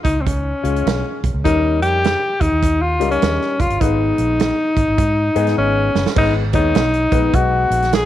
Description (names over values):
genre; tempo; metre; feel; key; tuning
uptempo 1960s-style soul; 102 BPM; 4/4; swing 63% on 8ths; unclear; A4 = 443 Hz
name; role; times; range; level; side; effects
breathy tenor saxophone; melody; 0.0-8.1 s; B#3 to G#4; -18 LUFS; left 1 dB; none
vintage muted fingered electric bass; bass; 0.0-8.0 s; E#1 to G#2; -20 LUFS; equal; none
natural country drum kit; drums; 0.0-8.1 s; crash cymbal, hi-hat, kick drum, snare drum; -20 LUFS; right 3 dB; none
clear grand piano; accompaniment; 0.6-7.8 s; G3 to C#5; -24 LUFS; left 10 dB; none
room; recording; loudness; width
light reverb, small room ambience; 1960s-style stereo; -14 LUFS; side -12 dB against mid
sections
0.0-6.2 A section; 6.2-8.1 B section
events
drum fill 5.6-6.2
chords
0.0 C#; 1.4 D#7; 3.8 G#m